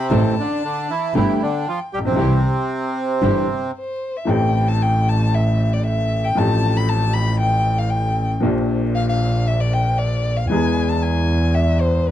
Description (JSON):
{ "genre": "tango", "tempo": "115 BPM", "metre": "4/4", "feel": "rubato", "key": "C major, A minor from 4.3 s", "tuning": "A4 = 440 Hz", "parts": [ { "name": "bandoneon", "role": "melody", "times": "0.0-3.7 s", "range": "C3 to G4", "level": "-21 LUFS", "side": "right 2 dB", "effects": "none" }, { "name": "warm violin", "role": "second line", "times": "0.0-12.1 s", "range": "B4 to B5", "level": "-24 LUFS", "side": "left 3 dB", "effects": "none" }, { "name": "clear upright piano", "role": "accompaniment", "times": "0.1-12.1 s", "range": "G1 to A4", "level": "-21 LUFS", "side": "left 1 dB", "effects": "none" }, { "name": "warm studio string section", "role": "stabs", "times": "0.1-3.4 s", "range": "A3 to G4", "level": "-30 LUFS", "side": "right 3 dB", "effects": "none" }, { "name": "rich double bass", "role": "bass", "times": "0.1-12.1 s", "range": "G1 to E2", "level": "-20 LUFS", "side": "right 1 dB", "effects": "none" } ], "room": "moderate studio reverb, RT60 0.5 s", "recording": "dark, warm production, vinyl crackle", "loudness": "-17 LUFS", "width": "side -11 dB against mid", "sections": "0.0-4.3 A section; 4.3-12.1 B section", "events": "violin solo 4.3-12.1", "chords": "0.1 Am; 1.1 Gadd9; 2.2 C; 4.3 Am7; 6.4 Fadd9/A; 8.4 Bb6; 10.5 E" }